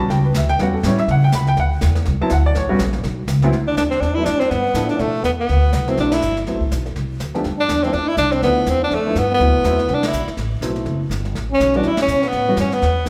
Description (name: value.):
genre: jazz, small-group swing and bop.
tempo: 245 BPM.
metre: 4/4.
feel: swing 59% on 8ths.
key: D mixolydian.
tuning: A4 = 440 Hz.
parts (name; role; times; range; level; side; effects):
warm upright piano; accompaniment; 0.0-13.1 s; D2 to B5; -24 LUFS; equal; none.
upright bass; bass; 0.0-13.1 s; F#1 to C#3; -22 LUFS; equal; none.
jazz brush drum kit; drums; 0.1-13.1 s; brushed snare drum, hi-hat, kick drum, ride cymbal, snare drum; -31 LUFS; equal; none.
bright tenor saxophone; melody; 3.7-13.1 s; A3 to E4; -21 LUFS; equal; none.
mellow trombone; second line; 3.7-13.1 s; A3 to E4; -26 LUFS; equal; none.
room: wet recital hall reverb, RT60 1.5 s.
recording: recorded in a church or concert hall.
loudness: -18 LUFS.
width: mono.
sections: 0.0-3.5 A section; 3.5-13.1 B section.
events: band accent 6.1, 10.0, 12.0.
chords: 0.0 A13; 1.6 D9; 2.5 A69; 3.5 D9; 4.5 G13; 5.5 D13; 7.4 G13; 9.4 D13 (rootless); 11.4 A13.